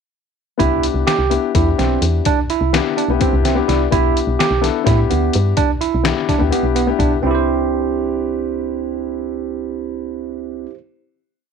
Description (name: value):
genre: progressive instrumental, band music in an uneven meter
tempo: 253 BPM (eighths)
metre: 7/8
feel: straight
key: C major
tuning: A4 = 440 Hz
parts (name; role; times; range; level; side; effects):
- dark baby grand piano; accompaniment; 0.6-10.7 s; B3 to E5; -21 LUFS; left 13 dB; none
- barky tine electric piano; arpeggios; 0.6-10.8 s; B3 to C5; -20 LUFS; right 13 dB; auto-pan
- woody FM bass; bass; 0.6-10.7 s; B1 to A2; -20 LUFS; equal; none
- trip hop sampler-style drum kit; drums; 0.6-7.1 s; hi-hat, kick drum, snare drum; -20 LUFS; left 3 dB; none
room: light reverb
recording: 1960s-style stereo with parts hard left and right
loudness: -15 LUFS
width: side -6 dB against mid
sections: 0.6-7.2 groove; 7.2-10.5 final chord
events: grand piano fill 3.2-3.9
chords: 0.6 Cmaj7; 3.9 Em7/B; 7.2 Cmaj7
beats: | 0.59 0.83 1.07 1.31 1.54 1.78 2.02 | 2.26 2.49 2.73 2.97 3.21 3.44 3.68 | 3.92 4.15 4.39 4.63 4.86 5.10 5.34 | 5.57 5.81 6.05 6.28 6.52 6.76 6.99 | 7.23 7.46 7.70 7.94 8.18 8.41 8.65 | 8.89 9.12 9.36 9.60 9.83 10.07 10.31